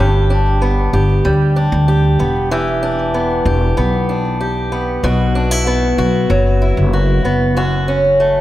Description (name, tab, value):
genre	folktronica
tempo	95 BPM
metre	4/4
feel	straight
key	E minor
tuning	A4 = 441 Hz
part	fingerpicked swing-style acoustic guitar	arpeggios	0.0-8.4 s	F#2 to G4	-16 LUFS	equal	none
part	upright bass	bass	0.0-8.4 s	E1 to D2	-15 LUFS	equal	none
room	moderate concert hall reverb, RT60 2.1 s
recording	none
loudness	-13 LUFS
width	side -14 dB against mid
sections	0.0-8.4 A section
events	none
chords	0.0 Em7; 5.0 Bsus4; 7.6 F#m7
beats	0.62 1.25 1.88 | 2.51 3.14 3.77 4.41 | 5.04 5.67 6.30 6.93 | 7.56 8.20